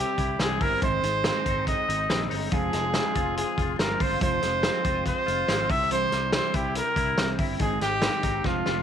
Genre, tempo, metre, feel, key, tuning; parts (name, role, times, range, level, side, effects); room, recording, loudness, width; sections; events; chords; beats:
jangly indie pop; 142 BPM; 4/4; straight; F minor; A4 = 442 Hz
clear trumpet; melody; 0.0-8.8 s; F4 to E5; -26 LUFS; right 1 dB; slapback echo
clean electric guitar; accompaniment; 0.0-8.8 s; Ab2 to F4; -33 LUFS; right 13 dB
direct-recorded clean electric guitar; arpeggios; 0.0-8.8 s; Ab2 to F4; -33 LUFS; left 14 dB; ensemble chorus, slapback echo
fingered electric bass; bass; 0.0-8.8 s; F1 to C2; -32 LUFS; equal
loose indie drum kit; drums; 0.2-8.8 s; hi-hat, kick drum, snare drum; -28 LUFS; equal
light reverb, small room ambience; 1960s-style stereo with parts hard left and right; -23 LUFS; side -8 dB against mid
0.0-8.8 A section
drum fill 8.4-8.8
0.0 C; 0.8 Ab; 2.5 Fm; 5.7 C; 7.6 Ab
0.40 | 0.82 1.25 1.67 2.09 | 2.52 2.94 3.37 3.79 | 4.21 4.64 5.06 5.48 | 5.91 6.33 6.75 7.18 | 7.60 8.02 8.45